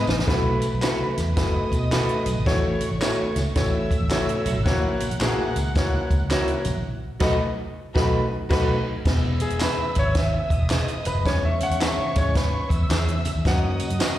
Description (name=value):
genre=uptempo 1960s-style soul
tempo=109 BPM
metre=4/4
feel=swing 64% on 8ths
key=E major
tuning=A4 = 443 Hz
part: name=dark studio violin section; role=second line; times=0.0-14.2 s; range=B4 to F#6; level=-33 LUFS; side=left 1 dB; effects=slapback echo
part: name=clear concert grand piano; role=accompaniment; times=0.0-14.2 s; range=E3 to F#5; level=-26 LUFS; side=left 2 dB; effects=slapback echo
part: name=vintage muted fingered electric bass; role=bass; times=0.0-14.0 s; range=E1 to B2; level=-24 LUFS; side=equal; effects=none
part: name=compact cocktail drum kit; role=drums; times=0.1-14.2 s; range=crash cymbal, hi-hat, kick drum, snare drum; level=-25 LUFS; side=equal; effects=none
part: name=congas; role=percussion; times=0.1-13.9 s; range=none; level=-35 LUFS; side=right 1 dB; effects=none
part: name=tambourine and handclaps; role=percussion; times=0.1-14.2 s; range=none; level=-35 LUFS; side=left 1 dB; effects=slapback echo
part: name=electric guitar through a small old amp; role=stabs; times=0.8-14.2 s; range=E4 to E5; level=-32 LUFS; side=right 5 dB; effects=slapback echo
room=light reverb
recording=live gig heard through the venue's PA, recital hall reverb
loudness=-20 LUFS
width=side -13 dB against mid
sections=0.3-9.1 A section; 9.1-14.2 B section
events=drum fill 0.0; band accent 6.9-9.1; grand piano solo 9.1-14.2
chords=0.3 B7sus4; 2.5 A6; 4.7 F#7/A#; 6.9 B7; 9.1 E; 11.3 C#m/E; 13.5 F#